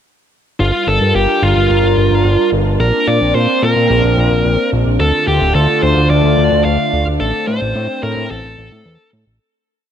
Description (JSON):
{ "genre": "synthwave", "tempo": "109 BPM", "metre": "4/4", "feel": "straight", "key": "unclear", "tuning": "A4 = 440 Hz", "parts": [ { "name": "high-gain lead guitar", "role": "melody", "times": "0.6-9.1 s", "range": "F4 to F5", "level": "-16 LUFS", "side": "equal", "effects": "distortion, shimmer reverb, tape echo" }, { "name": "chorused pulse-width pad", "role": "sustained chords", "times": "0.6-9.4 s", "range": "D3 to Bb4", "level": "-18 LUFS", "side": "equal", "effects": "none" }, { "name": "fat analog bass", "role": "bass", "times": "0.6-9.4 s", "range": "D1 to Bb2", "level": "-15 LUFS", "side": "equal", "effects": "none" } ], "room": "light reverb", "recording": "none", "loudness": "-11 LUFS", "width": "side -9 dB against mid", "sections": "0.6-9.4 verse", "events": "fade-out 6.5-9.4", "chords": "0.6 Gm7; 2.8 Bbadd9; 5.0 Dm; 7.2 Am" }